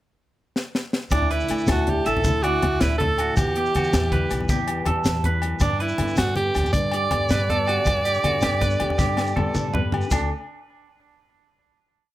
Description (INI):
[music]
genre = highlife guitar band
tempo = 107 BPM (dotted quarters)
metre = 12/8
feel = straight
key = unclear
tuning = A4 = 440 Hz
[part]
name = tight funk drum kit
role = drums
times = 0.6-10.2 s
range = crash cymbal, hi-hat, kick drum, snare drum, toms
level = -26 LUFS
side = equal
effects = none
[part]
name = edgy alto saxophone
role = melody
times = 1.1-9.7 s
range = D4 to D5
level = -24 LUFS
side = right 2 dB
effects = none
[part]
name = nylon-string guitar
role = accompaniment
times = 1.1-10.3 s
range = E2 to A4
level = -30 LUFS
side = left 4 dB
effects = none
[part]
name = clean electric guitar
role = arpeggios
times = 1.1-10.3 s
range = D4 to E5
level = -28 LUFS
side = right 4 dB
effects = tape echo
[part]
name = upright bass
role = bass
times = 1.1-10.3 s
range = A1 to G2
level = -26 LUFS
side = equal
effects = none
[part]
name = agogo bells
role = percussion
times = 1.1-10.2 s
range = none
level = -33 LUFS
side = left 5 dB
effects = none
[part]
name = congas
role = percussion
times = 1.1-10.3 s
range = none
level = -28 LUFS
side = left 1 dB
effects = none
[part]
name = shekere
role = percussion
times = 1.1-10.3 s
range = none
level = -33 LUFS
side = right 1 dB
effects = none
[sound]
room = light reverb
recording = none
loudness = -20 LUFS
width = side -15 dB against mid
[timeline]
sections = 0.0-1.1 pickup bar; 1.1-10.1 A section; 10.1-12.1 final chord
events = drum fill 0.6-1.1, 9.0-10.1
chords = 0.0 N.C.; 1.1 Dadd9; 3.4 Em; 5.6 G; 10.1 N.C.